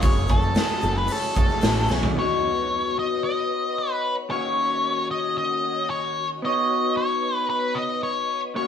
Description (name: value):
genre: psychedelic rock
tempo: 113 BPM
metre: 4/4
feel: straight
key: B major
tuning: A4 = 440 Hz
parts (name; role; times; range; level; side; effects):
- octave-fuzz lead guitar; melody; 0.0-8.7 s; A4 to D#5; -25 LUFS; left 2 dB; distortion
- soft string machine; sustained chords; 0.0-8.7 s; F#4 to G#5; -36 LUFS; equal; phaser, ensemble chorus
- electric guitar through a small old amp; riff; 0.0-8.7 s; F#2 to C#5; -26 LUFS; left 1 dB; phaser
- growling picked electric bass; bass; 0.0-2.1 s; F#1 to B1; -26 LUFS; equal; overdrive
- raw garage drum kit; drums; 0.0-2.2 s; hi-hat, kick drum, snare drum, toms; -23 LUFS; right 1 dB; none
- egg shaker; percussion; 0.0-2.0 s; none; -46 LUFS; left 7 dB; none
room: moderate studio reverb, RT60 0.8 s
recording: band playing live in one room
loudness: -21 LUFS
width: side -8 dB against mid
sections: 0.0-2.2 A section; 2.2-8.7 B section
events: drum fill 1.9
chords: 0.0 F#madd9; 2.2 Badd9; 4.3 D#m7; 6.4 Badd9